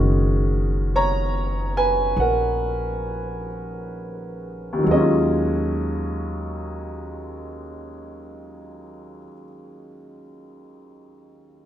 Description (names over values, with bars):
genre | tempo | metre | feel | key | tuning
jazz ballad | 42-50 BPM | 4/4 | swing 66% on 8ths | Eb minor | A4 = 440 Hz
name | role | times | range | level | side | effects
warm upright piano | accompaniment | 0.0-11.7 s | Eb2 to Bb5 | -23 LUFS | right 1 dB | none
upright bass | bass | 0.0-9.3 s | Gb1 to Eb2 | -26 LUFS | equal | none
room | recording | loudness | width
moderate studio reverb, RT60 0.7 s | minimal, uncompressed stereo recording | -20 LUFS | side -11 dB against mid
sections
0.0-4.9 A section; 4.9-10.5 B section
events
slowing down 0.0-4.9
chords
0.0 Ebm7; 4.9 Ebm11